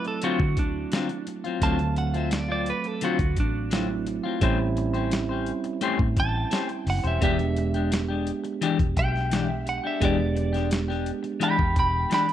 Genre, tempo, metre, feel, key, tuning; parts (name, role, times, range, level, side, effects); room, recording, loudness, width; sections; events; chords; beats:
straight-eighth soul blues; 86 BPM; 4/4; straight; A4 = 439 Hz
clean electric guitar; second line; 0.0-12.3 s; D4 to B5; -28 LUFS; right 2 dB; spring reverb, slapback echo
bell-like tine electric piano; accompaniment; 0.0-12.3 s; F#3 to E#5; -30 LUFS; right 6 dB
boom bap sampler-style drum kit; drums; 0.0-12.3 s; hi-hat, kick drum, snare drum; -27 LUFS; equal
clean electric guitar; stabs; 0.1-12.3 s; D3 to B#4; -28 LUFS; left 8 dB; slapback echo
vintage muted fingered electric bass; bass; 0.4-12.0 s; E1 to D3; -27 LUFS; equal
little or no reverb; dry, close 1970s-style studio recording; -23 LUFS; side -11 dB against mid
0.0-12.3 A section
clean electric guitar solo 0.0-12.3
0.0 D7#9; 4.4 A7#9; 7.2 E7#9
0.23 0.92 | 1.62 2.32 3.02 3.72 | 4.42 5.12 5.82 6.52 | 7.22 7.92 8.62 9.32 | 10.02 10.72 11.42 12.12